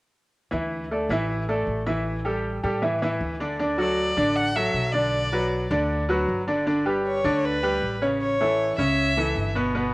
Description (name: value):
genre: latin, Cuban son and guajira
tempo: 156 BPM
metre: 4/4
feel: straight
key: D major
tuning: A4 = 440 Hz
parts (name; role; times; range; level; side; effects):
- bright grand piano; arpeggios; 0.5-9.9 s; B2 to E5; -24 LUFS; equal; cassette tape
- upright bass; bass; 0.5-9.9 s; G1 to A2; -30 LUFS; equal; none
- warm violin; melody; 3.8-9.5 s; B4 to F#5; -25 LUFS; equal; none
room: moderate spring reverb, RT60 2.3 s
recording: home recording on cassette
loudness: -22 LUFS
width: side -22 dB against mid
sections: 0.5-3.6 A section; 3.6-9.9 B section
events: none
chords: 0.5 Dsus2; 2.1 A5; 3.6 D; 5.1 Bm; 6.7 G; 8.2 A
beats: | 0.53 0.91 1.29 1.68 | 2.06 2.45 2.83 3.21 | 3.60 3.98 4.37 4.75 | 5.14 5.52 5.90 6.29 | 6.67 7.06 7.44 7.83 | 8.21 8.59 8.98 9.36 | 9.74